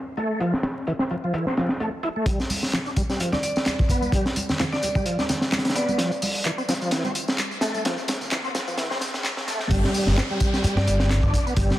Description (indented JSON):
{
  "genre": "breakbeat, breaks",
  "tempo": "129 BPM",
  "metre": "4/4",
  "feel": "swing 56% on 16ths",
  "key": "G mixolydian",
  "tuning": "A4 = 438 Hz",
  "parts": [
    { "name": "overdriven tonewheel organ", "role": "riff", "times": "0.2-11.8 s", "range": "E3 to E4", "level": "-27 LUFS", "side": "equal", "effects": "chorus vibrato, fast rotary speaker, tube saturation, low-pass filter, digital delay" },
    { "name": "crunchy breakbeat drum kit", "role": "drums", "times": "0.2-11.8 s", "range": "hi-hat, kick drum, snare drum", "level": "-25 LUFS", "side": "equal", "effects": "low-pass filter on kick, low-pass filter on hats, low-pass filter on snare, low-pass filter on room" },
    { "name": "electronic tambourine and handclaps", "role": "drums", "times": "2.3-11.8 s", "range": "none", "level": "-32 LUFS", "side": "equal", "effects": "low-pass filter on perc, low-pass filter on snare, low-pass filter on room" },
    { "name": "riser and downlifter", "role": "sound effects", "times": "5.6-11.8 s", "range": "none", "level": "-38 LUFS", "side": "equal", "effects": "none" },
    { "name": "congas", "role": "percussion", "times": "2.5-9.7 s", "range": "none", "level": "-34 LUFS", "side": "right 2 dB", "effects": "none" },
    { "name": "marimba with hard mallets", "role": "melody", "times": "3.3-6.0, 10.8-11.0 s", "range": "D5", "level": "-30 LUFS", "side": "right 1 dB", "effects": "old record sound, vintage 12-bit sampler grit, digital delay" },
    { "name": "overdriven fingered electric bass", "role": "bass", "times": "9.7-11.7 s", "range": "G1 to G2", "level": "-21 LUFS", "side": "equal", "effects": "none" }
  ],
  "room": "light reverb, small room ambience",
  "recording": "dense, heavily limited modern master, vinyl crackle, high-pass filter",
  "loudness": "-21 LUFS",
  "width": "side -14 dB against mid",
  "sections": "0.0-2.3 A section; 2.3-9.7 B section; 9.7-11.8 C section",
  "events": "build-up 2.3-9.7; filter sweep on tonewheel organ 2.3-9.7; filter sweep 2.3-9.7; drum fill 6.0-9.7; drop 9.7-11.8",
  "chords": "0.0 F; 2.3 G5; 6.0 F; 9.7 G5"
}